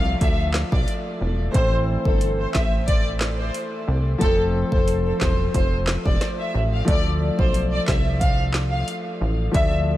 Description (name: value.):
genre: dancehall.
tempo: 90 BPM.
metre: 4/4.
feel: straight.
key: unclear.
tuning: A4 = 443 Hz.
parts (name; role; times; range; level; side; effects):
warm symphonic violin section; melody; 0.0-9.7 s; A4 to F5; -26 LUFS; left 1 dB; diffuse ambient delay.
clear concert grand piano; accompaniment; 0.0-10.0 s; E3 to D5; -28 LUFS; left 1 dB; none.
plucky analog bass; bass; 0.0-10.0 s; E1 to D2; -23 LUFS; equal; none.
downlifter; sound effects; 0.0-1.5 s; none; -46 LUFS; equal; none.
afro-pop drum kit; drums; 0.2-9.7 s; handclaps, hi-hat, kick drum, rim click, snare drum; -23 LUFS; equal; none.
room: moderate cathedral reverb, RT60 6.8 s.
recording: dreamy mix soaked in reverb.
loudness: -19 LUFS.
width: side -14 dB against mid.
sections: 0.0-10.0 A section.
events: none.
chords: 0.0 Dm; 1.5 Am; 4.2 F; 6.9 Dm.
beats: 0.21 0.88 | 1.54 2.21 2.88 3.54 | 4.21 4.88 5.54 6.21 | 6.88 7.54 8.21 8.88 | 9.54.